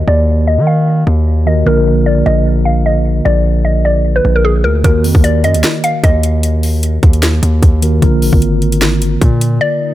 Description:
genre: hip hop, trap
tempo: 151 BPM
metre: 4/4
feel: half-time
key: Eb harmonic minor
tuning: A4 = 440 Hz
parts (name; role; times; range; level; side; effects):
- mallet-like synth pluck; melody; 0.0-6.4, 9.6-9.9 s; Ab4 to F5; -16 LUFS; left 1 dB; chorus, low-pass filter, digital delay
- mellow tine electric piano; accompaniment; 0.0-9.9 s; D3 to Bb4; -17 LUFS; equal; medium stereo tremolo, low-pass filter
- distorted 808-style bass; bass; 0.0-9.6 s; Ab1 to Eb3; -12 LUFS; equal; distortion
- impact and swell; sound effects; 0.0-0.1, 9.8-9.9 s; none; -36 LUFS; left 4 dB; none
- trap drum kit; drums; 4.8-9.5 s; hi-hat, kick drum, snare drum; -12 LUFS; equal; none
room: little or no reverb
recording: none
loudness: -9 LUFS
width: side -14 dB against mid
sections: 0.0-9.9 A section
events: filter sweep 0.0-4.8; break 9.6-9.9; swell 9.8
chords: 0.0 Ebm; 1.7 Bb; 4.8 Ebm; 8.0 Bb

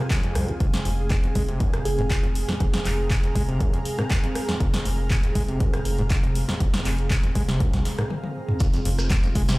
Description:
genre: acid house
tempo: 120 BPM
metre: 4/4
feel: straight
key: F minor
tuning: A4 = 440 Hz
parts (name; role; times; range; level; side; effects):
- warm analog pad; sustained chords; 0.0-9.6 s; C3 to Ab4; -34 LUFS; right 1 dB; chorus, sidechain pumping
- overdriven acid bass; riff; 0.0-9.6 s; F2 to Ab3; -29 LUFS; equal; distortion, sidechain pumping, dub echo
- granular cloud pad; texture; 0.0-8.1 s; C4 to Bb5; -34 LUFS; right 1 dB; built-in reverb, sidechain pumping
- electronic kick drum; drums; 0.1-9.5 s; none; -23 LUFS; equal; none
- punchy analog drum machine; drums; 0.1-9.6 s; handclaps, hi-hat, rim click, snare drum, toms; -30 LUFS; equal; none
- saturated sub bass; bass; 0.4-9.6 s; F1 to C2; -26 LUFS; equal; sidechain pumping
- kalimba; melody; 1.9-2.1 s; Ab4; -33 LUFS; right 3 dB; dub echo
- shekere; percussion; 8.6-9.6 s; none; -37 LUFS; right 3 dB; none
room: light reverb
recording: played on a big sound system in a bare room, stone room reverb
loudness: -21 LUFS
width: side -21 dB against mid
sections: 0.0-8.6 A section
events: break 8.1-8.6; drum fill 8.1-8.6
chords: 0.0 Fm

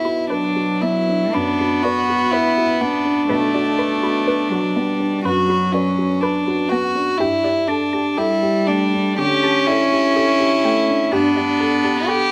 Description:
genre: neoclassical piano and strings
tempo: 62 BPM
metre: 4/4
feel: rubato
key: B minor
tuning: A4 = 439 Hz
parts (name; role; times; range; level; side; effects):
- rich violin; melody; 0.0-12.3 s; C#4 to G4; -21 LUFS; equal; none
- felt-muted upright piano; accompaniment; 0.0-12.3 s; B1 to B4; -26 LUFS; equal; none
- warbly dusty pluck; arpeggios; 0.0-12.2 s; G4 to B5; -31 LUFS; equal; chorus, slapback echo
- clear cello; second line; 0.3-12.3 s; F#3 to C#4; -23 LUFS; equal; none
room: light reverb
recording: close, detailed microphones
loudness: -18 LUFS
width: mono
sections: 0.0-12.3 A section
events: none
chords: 0.0 Bm; 7.2 Gsus2

